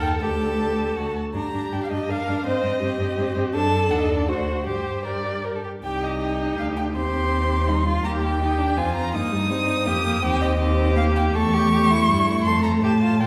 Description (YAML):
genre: quick classical-period movement for string quartet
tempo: 162 BPM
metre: 3/4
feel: rubato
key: G minor, C minor from 5.8 s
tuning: A4 = 440 Hz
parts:
  - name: warm violin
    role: melody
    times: 0.0-13.3 s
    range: Bb4 to Eb6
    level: -28 LUFS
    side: equal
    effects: none
  - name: rich violin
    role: second line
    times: 0.0-13.3 s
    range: C4 to D5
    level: -30 LUFS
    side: equal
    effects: none
  - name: warm viola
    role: accompaniment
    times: 0.0-13.3 s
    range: G3 to C5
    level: -28 LUFS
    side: equal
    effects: none
  - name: rich cello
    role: bass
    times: 0.0-13.3 s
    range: C2 to Bb2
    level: -27 LUFS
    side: equal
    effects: none
room: wet recital hall reverb, RT60 1.4 s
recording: heard from further back in the room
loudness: -22 LUFS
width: mono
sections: 0.0-5.8 A section; 5.8-13.3 B section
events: none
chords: 0.2 Dsus4; 1.3 Gm; 2.5 Cm/G; 3.5 D/F#; 4.3 D7; 4.7 Gm; 5.8 Cm; 7.0 Cm/Eb; 8.0 Eb; 9.1 Eb/G; 10.2 Cm/Eb; 11.4 A7/E; 12.5 F